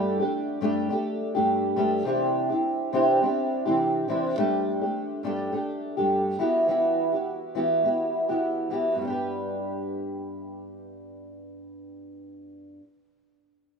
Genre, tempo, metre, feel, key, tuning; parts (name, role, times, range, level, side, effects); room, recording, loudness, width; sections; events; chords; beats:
pop; 104 BPM; 4/4; swing 55% on 16ths; G major; A4 = 440 Hz
fingerpicked steel-string acoustic guitar; accompaniment; 0.0-12.9 s; G2 to B4; -24 LUFS; equal; double-tracked left and right
moderate plate reverb, RT60 3.7 s; rough home demo mix; -23 LUFS; side -5 dB against mid
0.0-9.0 A section; 9.0-11.3 B section
0.0 Gsus2; 2.1 Cadd9; 4.4 Gsus2; 6.4 Emadd9; 9.0 G
0.33 0.91 1.49 | 2.06 2.64 3.22 3.79 | 4.37 4.95 5.53 6.11 | 6.69 7.27 7.85 8.43 | 9.00 9.58 10.16 10.74